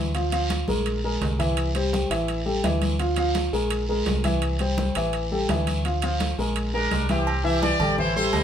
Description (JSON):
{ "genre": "latin, salsa", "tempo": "168 BPM", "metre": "4/4", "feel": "straight", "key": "C major", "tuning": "A4 = 445 Hz", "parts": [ { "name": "dark grand piano", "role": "accompaniment", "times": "0.0-8.4 s", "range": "E3 to F5", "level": "-25 LUFS", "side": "left 1 dB", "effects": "none" }, { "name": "deep dub fingered electric bass", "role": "bass", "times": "0.0-8.4 s", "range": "A1 to D2", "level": "-27 LUFS", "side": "right 1 dB", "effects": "none" }, { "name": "congas", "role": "percussion", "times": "0.1-8.4 s", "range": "none", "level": "-31 LUFS", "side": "left 1 dB", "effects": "none" }, { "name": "guiro", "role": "percussion", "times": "0.1-8.4 s", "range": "none", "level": "-35 LUFS", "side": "right 2 dB", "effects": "none" }, { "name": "timbales and agogo bells", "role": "percussion", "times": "0.1-8.4 s", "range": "none", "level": "-32 LUFS", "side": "right 6 dB", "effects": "none" }, { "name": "bright trumpet section", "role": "melody", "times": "6.7-8.4 s", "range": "C4 to E5", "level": "-25 LUFS", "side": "equal", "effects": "none" } ], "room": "moderate studio reverb, RT60 0.6 s", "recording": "band playing live in one room", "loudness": "-22 LUFS", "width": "side -9 dB against mid", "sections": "0.0-7.3 A section; 7.3-8.4 B section", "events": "drum fill 0.5-1.6", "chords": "0.1 Dm; 0.9 Caug7/Bb; 1.6 C; 2.3 A5; 3.0 Dm; 3.7 Caug7/Bb; 4.4 C; 5.1 A5; 5.8 Dm; 6.6 Bb7; 7.3 C" }